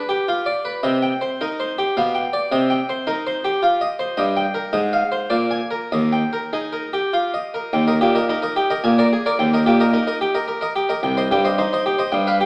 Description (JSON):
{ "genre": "classical, baroque-style suite movement for harpsichord", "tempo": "108 BPM", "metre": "3/4", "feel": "rubato", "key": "C minor, Eb major from 4.2 s", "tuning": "A4 = 440 Hz", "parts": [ { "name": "harpsichord", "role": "solo", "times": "0.0-12.5 s", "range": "C2 to Ab5", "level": "-20 LUFS", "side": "equal", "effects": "none" } ], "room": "wet recital hall reverb, RT60 1.6 s", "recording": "AM radio sound", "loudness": "-20 LUFS", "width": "mono", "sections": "0.0-7.7 A section; 7.7-12.5 B section", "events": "none", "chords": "0.0 G; 0.8 Cm; 2.0 G7/B; 2.5 Cm; 4.2 Eb/G; 4.7 Fm7/Ab; 5.3 Bb7; 5.9 Eb; 8.8 Bb7; 9.4 Eb; 11.0 Cm" }